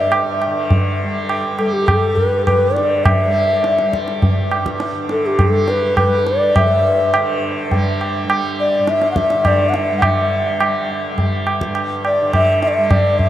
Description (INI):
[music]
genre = indian classical, Hindustani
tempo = 103 BPM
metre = 3/4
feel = straight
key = G raga bilaval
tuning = A4 = 442 Hz
[part]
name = bansuri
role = melody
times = 0.0-13.3 s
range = G4 to F#5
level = -17 LUFS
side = left 1 dB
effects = tape echo
[part]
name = tanpura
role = drone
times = 0.0-13.3 s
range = G2 to G3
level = -23 LUFS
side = right 1 dB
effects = none
[part]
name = tabla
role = percussion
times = 0.1-13.3 s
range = none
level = -18 LUFS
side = right 1 dB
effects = none
[sound]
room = wet huge ambient reverb, RT60 7.2 s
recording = dreamy mix soaked in reverb, cassette tape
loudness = -14 LUFS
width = side -12 dB against mid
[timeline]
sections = 0.0-10.0 A section; 10.0-13.3 B section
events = none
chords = none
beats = 0.12 0.71 | 1.29 1.88 2.47 | 3.05 3.64 4.22 | 4.81 5.39 5.97 | 6.55 7.14 7.72 | 8.30 8.88 9.45 | 10.03 10.61 11.18 | 11.76 12.34 12.91